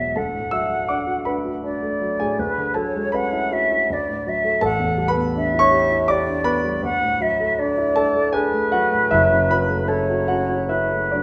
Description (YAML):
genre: classical, impressionist duo for flute and grand piano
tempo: 80 BPM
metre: 3/4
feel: uneven beats, rubato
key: D lydian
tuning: A4 = 435 Hz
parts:
  - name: mellow hollow silver concert flute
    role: melody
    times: 0.0-11.2 s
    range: B4 to F#5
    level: -24 LUFS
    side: equal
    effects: none
  - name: dark concert grand piano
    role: accompaniment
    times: 0.0-11.2 s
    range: E1 to E6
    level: -23 LUFS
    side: equal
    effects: none
room: wet recital hall reverb, RT60 1.3 s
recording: recorded in a church or concert hall, nothing above 10.8 kHz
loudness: -20 LUFS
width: mono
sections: 0.0-11.2 A section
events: none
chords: 0.2 D6; 2.4 E13/D; 3.9 D6; 4.6 A9sus4; 6.8 D69; 9.1 F#m7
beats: | 0.16 0.90 1.65 | 2.39 3.14 3.91 | 4.63 5.35 6.09 | 6.83 7.59 8.35 | 9.12 9.89 10.70